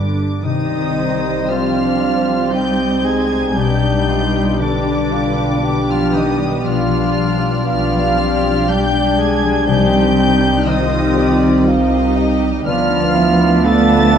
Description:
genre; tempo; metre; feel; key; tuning
classical, slow romantic movement for symphony orchestra; 59 BPM; 3/4; rubato; C minor; A4 = 439 Hz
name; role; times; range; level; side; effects
dark studio violin section; melody; 0.0-14.2 s; D6 to A6; -25 LUFS; left 1 dB; none
mellow flute section; second line; 0.0-14.2 s; D5 to A5; -23 LUFS; right 1 dB; none
warm clarinet; second line; 0.0-14.2 s; D4 to A4; -25 LUFS; equal; none
dark studio viola section; accompaniment; 0.0-14.2 s; G3 to B4; -22 LUFS; right 1 dB; none
concert harp; arpeggios; 0.0-14.2 s; G2 to D6; -22 LUFS; left 6 dB; none
rich studio double bass section; bass; 0.0-14.2 s; G1 to D2; -23 LUFS; right 3 dB; none
warm studio cello section; bass; 0.0-14.2 s; G2 to A3; -20 LUFS; right 2 dB; none
warm bassoon; accompaniment; 0.4-14.2 s; C4 to G4; -23 LUFS; right 1 dB; none
mellow French horn section; sustained chords; 0.4-14.2 s; Eb3 to D4; -20 LUFS; left 2 dB; none
dark studio violin section; second line; 0.5-14.2 s; B3 to Eb5; -26 LUFS; left 3 dB; none
room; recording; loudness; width
wet scoring stage reverb, RT60 1.6 s; dark, warm production, nothing above 10.6 kHz; -13 LUFS; side -8 dB against mid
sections
0.5-14.2 A section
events
none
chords
0.5 Cm; 3.6 G/B; 6.7 G7/B; 9.7 Cm; 12.7 Bdim/D

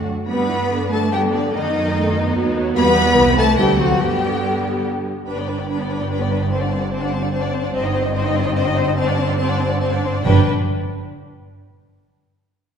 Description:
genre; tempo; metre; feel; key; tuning
quick classical-period movement for string orchestra; 144 BPM; 3/4; straight; G major; A4 = 436 Hz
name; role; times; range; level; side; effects
rich chamber violin section; melody; 0.0-10.5 s; D5 to B5; -26 LUFS; left 5 dB; none
rich chamber violin section; second line; 0.0-10.5 s; D4 to Eb5; -23 LUFS; left 3 dB; none
rich symphonic viola section; accompaniment; 0.0-10.5 s; D3 to Eb4; -23 LUFS; right 2 dB; none
rich chamber double bass section; bass; 0.0-10.5 s; G1 to G2; -24 LUFS; right 2 dB; none
warm chamber cello section; bass; 0.0-10.5 s; G2 to B3; -22 LUFS; right 2 dB; none
room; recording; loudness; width
wet concert hall reverb, RT60 1.9 s; heard from further back in the room; -16 LUFS; side -7 dB against mid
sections
0.0-5.3 A section; 5.3-10.2 B section; 10.2-11.5 C section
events
none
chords
0.3 G; 1.5 B7/F#; 2.8 Em; 3.2 C; 3.6 D7; 4.0 G; 6.5 D7/G; 7.7 Cm/G; 9.0 D7/G; 10.2 G5

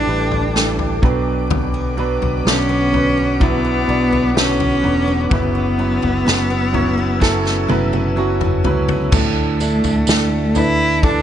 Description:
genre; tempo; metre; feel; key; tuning
pop ballad; 63 BPM; 4/4; straight; B minor; A4 = 444 Hz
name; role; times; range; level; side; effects
rich cello; melody; 0.0-11.2 s; A3 to E4; -19 LUFS; equal; none
warm baby grand piano; accompaniment; 0.0-11.2 s; A2 to D5; -21 LUFS; right 4 dB; none
glassy FM pad; sustained chords; 0.0-9.1 s; A4 to E6; -28 LUFS; left 3 dB; ensemble chorus, built-in reverb
fingered electric bass; bass; 0.0-11.2 s; E1 to D2; -21 LUFS; equal; none
unplugged drum kit; drums; 0.3-11.2 s; crash cymbal, kick drum, snare drum, toms; -20 LUFS; left 1 dB; none
picked steel-string acoustic guitar; arpeggios; 1.5-11.2 s; F#2 to A4; -28 LUFS; left 5 dB; none
tambourine; percussion; 9.1-10.8 s; none; -30 LUFS; right 8 dB; none
room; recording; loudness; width
small room ambience; nothing above 10.7 kHz; -14 LUFS; side -10 dB against mid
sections
0.0-9.1 A section; 9.1-11.2 B section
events
drum fill 7.2-9.1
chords
0.0 A7sus4; 1.0 Bm; 5.3 F#7sus4; 9.1 Dsus2

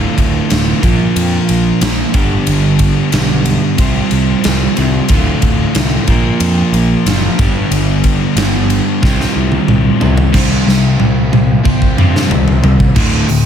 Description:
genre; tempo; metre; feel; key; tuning
quiet-loud alternative rock; 92 BPM; 4/4; straight; unclear; A4 = 440 Hz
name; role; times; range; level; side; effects
overdriven electric guitar; riff; 0.0-13.5 s; D2 to C5; -17 LUFS; left 9 dB; none
overdriven semi-hollow guitar; riff; 0.0-13.5 s; D2 to C4; -17 LUFS; right 10 dB; none
fuzz picked electric bass; bass; 0.0-13.5 s; D1 to G2; -16 LUFS; equal; overdrive
big rock drum kit; drums; 0.2-13.4 s; crash cymbal, hi-hat, kick drum, ride cymbal, snare drum, toms; -15 LUFS; equal; none
overdriven electric guitar; riff; 10.3-13.5 s; D2 to C5; -20 LUFS; equal; none
room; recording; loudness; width
light reverb, small room ambience; none; -10 LUFS; side -8 dB against mid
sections
0.0-10.3 A section; 10.3-13.0 B section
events
drum fill 9.0-10.3, 10.3-13.0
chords
0.0 Dm; 0.8 Bb5; 2.1 G; 3.8 Csus4; 5.1 Dm; 6.1 Bb5; 7.4 G; 9.0 Csus4

